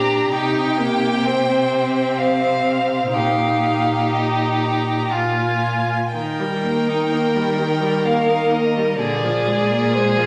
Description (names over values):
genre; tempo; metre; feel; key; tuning
classical, slow romantic movement for string quartet; 60-66 BPM; 3/4; rubato; Eb major; A4 = 440 Hz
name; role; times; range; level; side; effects
rich violin; melody; 0.0-10.3 s; C5 to Bb5; -26 LUFS; equal; none
clear violin; second line; 0.0-10.3 s; F4 to C5; -24 LUFS; equal; none
rich viola; accompaniment; 0.0-10.3 s; D3 to F4; -25 LUFS; equal; none
rich cello; bass; 0.0-10.3 s; Bb2 to Eb3; -26 LUFS; equal; none
room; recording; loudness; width
wet recital hall reverb, RT60 1.5 s; none; -19 LUFS; mono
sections
0.0-10.3 A section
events
none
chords
0.3 Cm7; 3.1 Eb/Bb; 5.1 Bb5; 6.1 Eb; 9.0 Bb7